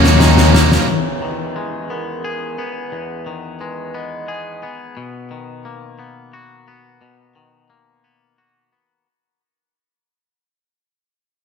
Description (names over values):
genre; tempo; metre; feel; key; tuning
post-rock; 59 BPM (dotted quarters); 6/8; straight; E lydian; A4 = 440 Hz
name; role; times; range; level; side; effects
rich cello; melody; 0.0-0.5 s; C#4; -26 LUFS; left 1 dB; none
twangy electric guitar; arpeggios; 0.0-9.1 s; E2 to G#4; -27 LUFS; left 5 dB; tape echo
vibraphone with medium mallets; arpeggios; 0.0-4.6 s; A#4 to D#5; -27 LUFS; right 6 dB; tape echo
distorted electric guitar; riff; 0.0-0.9 s; D#3 to D#4; -18 LUFS; right 13 dB; overdrive
thick fuzz guitar; riff; 0.0-0.9 s; D#3 to D#4; -17 LUFS; left 11 dB; distortion
fuzz picked electric bass; bass; 0.0-0.8 s; D#2; -13 LUFS; equal; overdrive
snare drum; drums; 0.0-0.9 s; none; -17 LUFS; left 1 dB; none
room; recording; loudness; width
light reverb, studio ambience; none; -15 LUFS; side -6 dB against mid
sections
0.9-9.1 A section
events
drum fill 0.0-0.9; fade-out 0.9-9.1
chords
0.0 D#m7; 0.9 Emaj7; 5.0 Bmaj7